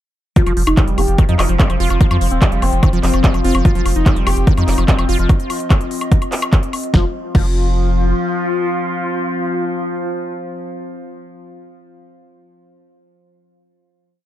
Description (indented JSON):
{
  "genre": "psychedelic trance",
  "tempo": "146 BPM",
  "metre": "4/4",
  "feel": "straight",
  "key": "unclear",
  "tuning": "A4 = 442 Hz",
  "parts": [
    { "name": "wide unison lead", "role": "melody", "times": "0.4-11.0 s", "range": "C4 to G4", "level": "-23 LUFS", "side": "left 1 dB", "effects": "phaser, sidechain pumping, digital delay" },
    { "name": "overtone-sweeping drone", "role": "sustained chords", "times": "0.7-11.0 s", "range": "F3", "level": "-26 LUFS", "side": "left 2 dB", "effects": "chorus, built-in reverb, sidechain pumping" },
    { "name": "liquid acid bass", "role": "riff", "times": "0.4-7.5 s", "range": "Eb3 to F4", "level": "-25 LUFS", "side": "moving between left 3 dB and right 4 dB", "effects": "chorus, auto-pan, sidechain pumping, digital delay" },
    { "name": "big-room dance drum kit", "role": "drums", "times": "0.4-7.5 s", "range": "crash cymbal, handclaps, hi-hat, snare drum, woodblock", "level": "-23 LUFS", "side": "left 1 dB", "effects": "overdrive" },
    { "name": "electronic kick drum", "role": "drums", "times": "0.4-7.5 s", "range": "none", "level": "-13 LUFS", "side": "equal", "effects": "none" },
    { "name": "warbly tape-like pad", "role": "texture", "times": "0.4-11.0 s", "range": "C4 to C6", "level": "-25 LUFS", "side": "left 3 dB", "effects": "chorus, built-in reverb, sidechain pumping" },
    { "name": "round analog bass", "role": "bass", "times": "0.5-8.1 s", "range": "Eb1 to F2", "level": "-16 LUFS", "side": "equal", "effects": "none" }
  ],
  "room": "digital ambience",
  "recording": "dark, warm production",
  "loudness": "-13 LUFS",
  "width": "side -13 dB against mid",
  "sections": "0.4-6.9 drop; 6.9-10.2 final chord",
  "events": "drop 0.4-6.9",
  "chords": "0.4 F5",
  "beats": "| 0.36 0.77 1.18 1.59 | 2.01 2.42 2.83 3.24 | 3.65 4.06 4.47 4.88 | 5.29 5.71 6.12 6.53 | 6.94 7.35 7.76 8.17 | 8.58 8.99 9.40 9.81"
}